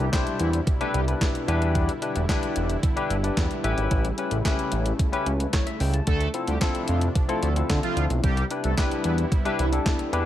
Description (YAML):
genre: early-eighties boogie funk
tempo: 111 BPM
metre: 4/4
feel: straight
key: unclear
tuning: A4 = 438 Hz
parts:
  - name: analog synth brass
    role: second line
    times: 0.0-1.0, 6.1-9.7 s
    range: E3 to B4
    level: -32 LUFS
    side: right 1 dB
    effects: chorus, phaser
  - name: barky tine electric piano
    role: accompaniment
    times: 0.0-10.3 s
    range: C4 to A5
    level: -28 LUFS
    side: left 4 dB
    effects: analog chorus
  - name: warm analog pad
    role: sustained chords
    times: 0.0-10.3 s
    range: B2 to E4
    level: -33 LUFS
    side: right 1 dB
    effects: chorus
  - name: fat analog bass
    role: bass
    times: 0.0-10.3 s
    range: E1 to D3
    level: -24 LUFS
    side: right 1 dB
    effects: none
  - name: crisp 8-bit digital drum machine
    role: drums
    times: 0.1-10.3 s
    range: handclaps, hi-hat, kick drum, snare drum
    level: -26 LUFS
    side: equal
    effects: overdrive, gated reverb
room: little or no reverb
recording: none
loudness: -22 LUFS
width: side -12 dB against mid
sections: 0.0-10.3 A section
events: none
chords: 0.0 Cmaj7; 1.5 Em7; 3.6 A7; 6.1 Dm7; 8.2 Cmaj7